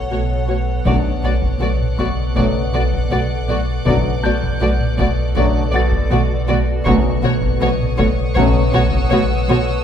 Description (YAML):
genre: cinematic, suspense film score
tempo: 80 BPM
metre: 4/4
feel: straight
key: B minor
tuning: A4 = 440 Hz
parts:
  - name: granular cloud pad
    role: sustained chords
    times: 0.0-9.8 s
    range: F#4 to F#5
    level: -28 LUFS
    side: equal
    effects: built-in reverb
  - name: concert harp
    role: riff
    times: 0.0-9.8 s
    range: B2 to B3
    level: -22 LUFS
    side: left 3 dB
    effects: none
  - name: pure sine sub bass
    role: drone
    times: 0.0-9.8 s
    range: B1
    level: -22 LUFS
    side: equal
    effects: none
  - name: clear baby grand piano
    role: texture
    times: 0.0-9.8 s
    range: A5 to A6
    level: -30 LUFS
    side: left 1 dB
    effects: none
  - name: warm studio violin section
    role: melody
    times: 0.1-9.6 s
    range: C#5 to D5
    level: -26 LUFS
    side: left 4 dB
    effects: none
  - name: dark studio violin section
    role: second line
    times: 0.1-9.6 s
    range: F#4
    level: -25 LUFS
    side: left 1 dB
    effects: none
  - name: dark studio viola section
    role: accompaniment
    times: 0.1-9.6 s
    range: A3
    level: -25 LUFS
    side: right 3 dB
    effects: none
  - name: dark studio double bass section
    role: bass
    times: 0.1-9.6 s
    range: B1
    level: -24 LUFS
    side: right 1 dB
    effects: none
  - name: warm studio cello section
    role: bass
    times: 0.1-9.6 s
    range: B2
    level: -25 LUFS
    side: right 3 dB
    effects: none
  - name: taiko ensemble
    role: drums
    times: 0.8-9.6 s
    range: none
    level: -25 LUFS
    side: equal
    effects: none
  - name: bright trombone section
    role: sustained chords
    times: 0.9-8.6 s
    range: F#2 to F#3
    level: -28 LUFS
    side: right 3 dB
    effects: none
  - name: dark French horn section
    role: sustained chords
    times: 0.9-8.6 s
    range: A3 to D4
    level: -26 LUFS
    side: left 3 dB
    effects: none
  - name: timpani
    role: percussion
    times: 0.9-1.9, 6.9-7.9 s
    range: B2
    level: -26 LUFS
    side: right 1 dB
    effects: none
  - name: warm studio violin section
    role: texture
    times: 0.9-9.8 s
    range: C#6 to F#6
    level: -33 LUFS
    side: left 1 dB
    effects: none
room: wet scoring stage reverb, RT60 1.9 s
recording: minimal, uncompressed stereo recording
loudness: -15 LUFS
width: side -8 dB against mid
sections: 0.9-9.8 A section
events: none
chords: 0.0 F#m/B; 0.9 Bm7; 6.9 F#m/B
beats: 0.11 | 0.86 1.61 2.36 3.11 | 3.86 4.61 5.36 6.11 | 6.86 7.61 8.36 9.11